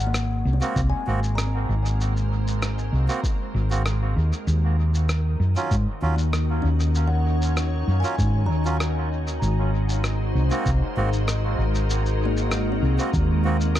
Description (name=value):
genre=ambient dub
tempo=97 BPM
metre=4/4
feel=straight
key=unclear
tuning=A4 = 440 Hz
part: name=soft additive organ-like pad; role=sustained chords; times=0.0-13.8 s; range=Eb3 to Db5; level=-30 LUFS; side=equal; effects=ensemble chorus, built-in reverb
part: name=kalimba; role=arpeggios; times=0.0-13.8 s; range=Bb3 to Bb5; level=-33 LUFS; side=left 3 dB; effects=dub echo
part: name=hollow-body short-scale fingered electric bass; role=bass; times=0.0-13.8 s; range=Ab1 to Ab2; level=-22 LUFS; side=equal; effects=tube saturation
part: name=electronic rim click and shaker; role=drums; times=0.1-13.8 s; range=none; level=-32 LUFS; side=equal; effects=small room reverb, dub echo
part: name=melodica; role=stabs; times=0.6-13.6 s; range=Gb3 to Gb4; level=-32 LUFS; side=right 3 dB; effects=dub echo
part: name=electronic kick drum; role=drums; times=0.8-13.3 s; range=none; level=-26 LUFS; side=equal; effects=overdrive, small room reverb
room=digital ambience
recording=echo-heavy mix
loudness=-20 LUFS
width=side -12 dB against mid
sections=0.0-13.8 A section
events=fade-in on ambient pad 0.0-13.8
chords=0.0 Ab9; 4.5 Ebm7; 9.4 Ab9